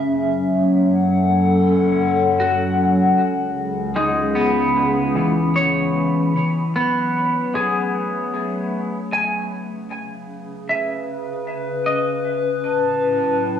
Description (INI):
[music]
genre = ambient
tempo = 77 BPM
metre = 4/4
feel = straight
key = F# dorian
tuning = A4 = 440 Hz
[part]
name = warbly tape-like pad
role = sustained chords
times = 0.0-13.6 s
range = A2 to F#5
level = -19 LUFS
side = left 1 dB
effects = chorus, built-in reverb, cassette tape
[part]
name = rich studio double bass section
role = bass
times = 0.0-6.3 s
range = F#1 to C#2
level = -28 LUFS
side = equal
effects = none
[part]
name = semi-hollow electric guitar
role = arpeggios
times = 2.4-13.6 s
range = E3 to G#5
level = -21 LUFS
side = equal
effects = lush chorus, cassette tape, tape echo
[part]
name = glass harmonica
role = texture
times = 12.6-13.6 s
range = A5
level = -24 LUFS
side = right 6 dB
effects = cassette tape
[sound]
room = wet spring reverb, RT60 1.6 s, studio reverb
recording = home recording on cassette, small room reverb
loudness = -17 LUFS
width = side -9 dB against mid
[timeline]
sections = 0.0-6.4 A section; 6.4-13.6 B section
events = fade-in on ambient pad 6.4-13.6; fade-out on clean electric guitar 6.4-13.6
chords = 0.1 F#m; 3.2 C#m; 6.4 F#m7; 9.5 C#m7; 12.6 A6